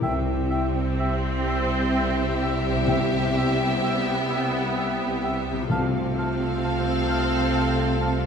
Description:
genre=cinematic, emotional film score for orchestra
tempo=43 BPM (dotted quarters)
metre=6/8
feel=rubato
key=C major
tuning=A4 = 441 Hz
part: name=clear symphonic violin section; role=melody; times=0.0-8.3 s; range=E5 to F5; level=-32 LUFS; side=left 3 dB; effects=none
part: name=mellow hollow silver concert flute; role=second line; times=0.0-8.1 s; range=G5 to A5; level=-35 LUFS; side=left 2 dB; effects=none
part: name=rich symphonic violin section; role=second line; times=0.0-8.3 s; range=G4 to A4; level=-32 LUFS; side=equal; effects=none
part: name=warm oboe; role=second line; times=0.0-8.2 s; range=E5 to F5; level=-34 LUFS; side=right 4 dB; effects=none
part: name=clear studio viola section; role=accompaniment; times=0.0-8.3 s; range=B3 to C4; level=-29 LUFS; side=right 2 dB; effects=none
part: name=mellow French horn section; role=sustained chords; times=0.0-8.3 s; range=G3 to F4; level=-30 LUFS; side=left 2 dB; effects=none
part: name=concert harp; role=arpeggios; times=0.0-8.3 s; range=C3 to A4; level=-33 LUFS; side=left 7 dB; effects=none
part: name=rich symphonic cello section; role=bass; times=0.0-8.3 s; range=C3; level=-29 LUFS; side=right 2 dB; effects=none
part: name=rich symphonic double bass section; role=bass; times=0.0-8.3 s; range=C2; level=-29 LUFS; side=right 2 dB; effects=none
part: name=timpani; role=percussion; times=0.0-7.0 s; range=C3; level=-31 LUFS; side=left 2 dB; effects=none
room=wet scoring stage reverb, RT60 1.7 s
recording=minimal, uncompressed stereo recording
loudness=-21 LUFS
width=side -6 dB against mid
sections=0.0-8.3 A section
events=none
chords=0.0 C; 2.9 Em/C; 5.7 F/C

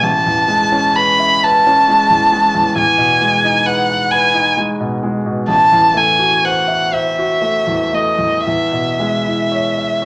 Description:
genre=classical, impressionist duo for violin and grand piano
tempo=38-46 BPM (dotted quarters)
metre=6/8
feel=rubato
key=unclear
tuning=A4 = 440 Hz
part: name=rich violin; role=melody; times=0.0-10.1 s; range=D#5 to B5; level=-15 LUFS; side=equal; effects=none
part: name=bright grand piano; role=accompaniment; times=0.0-10.1 s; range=A1 to F#5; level=-21 LUFS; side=equal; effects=none
room=light reverb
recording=none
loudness=-14 LUFS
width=mono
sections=0.0-10.1 A section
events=none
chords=0.1 Amaj9; 2.8 Emaj9; 5.5 Am6; 8.5 E6

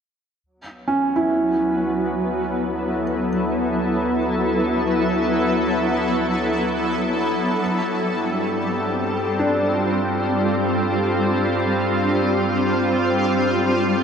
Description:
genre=ambient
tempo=free time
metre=none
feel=none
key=unclear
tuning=A4 = 439 Hz
part: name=warm sub bass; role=bass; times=0.4-14.0 s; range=D2 to G2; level=-33 LUFS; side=equal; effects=none
part: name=shimmering ambient pad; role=sustained chords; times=1.2-14.0 s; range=F#3 to A4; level=-19 LUFS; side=equal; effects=chorus, built-in reverb
part: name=wind-like tuned noise texture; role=texture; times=2.6-14.0 s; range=D4 to D6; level=-33 LUFS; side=equal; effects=none
part: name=felt-muted upright piano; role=arpeggios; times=0.9-14.0 s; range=C#4 to E4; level=-25 LUFS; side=right 1 dB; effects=diffuse ambient delay
room=wet lush hall reverb, RT60 2.6 s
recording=dreamy mix soaked in reverb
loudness=-18 LUFS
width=side -7 dB against mid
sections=0.4-14.0 A section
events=fade-in on sub bass 0.4-14.0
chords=0.4 Dmaj9; 7.6 Gsus2

